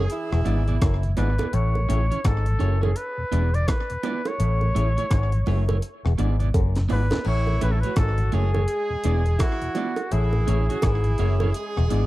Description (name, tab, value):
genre	roots reggae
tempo	84 BPM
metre	4/4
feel	swing 62% on 16ths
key	A major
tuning	A4 = 440 Hz
part	clear flugelhorn	melody	0.0-12.1 s	F#4 to D5	-29 LUFS	equal	dub echo
part	clear horn section	second line	0.0-1.1, 7.2-12.1 s	E3 to G#4	-33 LUFS	right 3 dB	dub echo
part	electric guitar at the edge of break-up	accompaniment	0.0-12.1 s	A3 to D5	-33 LUFS	right 7 dB	vibrato effect, dub echo
part	mellow tonewheel organ	accompaniment	0.0-12.0 s	E2 to G#4	-32 LUFS	left 2 dB	chorus vibrato, slow rotary speaker, tube saturation
part	vintage muted fingered electric bass	bass	0.0-12.1 s	E1 to A1	-21 LUFS	equal	none
part	breakbeat sampler-style drum kit	drums	0.1-12.1 s	crash cymbal, hi-hat, kick drum, rim click, snare drum	-25 LUFS	equal	none
part	bright clav	riff	0.3-12.1 s	E2 to A2	-35 LUFS	left 10 dB	phaser
part	bongos	percussion	0.8-11.5 s	none	-31 LUFS	right 5 dB	none
room	little or no reverb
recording	dry, close 1970s-style studio recording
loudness	-20 LUFS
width	side -17 dB against mid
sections	0.0-12.1 A section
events	drum fill 6.5-7.3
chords	0.1 E7; 1.5 Amaj7; 3.0 E7; 4.4 Amaj7; 5.8 E7; 7.3 Amaj7; 8.7 E7; 10.1 Amaj7; 11.6 E7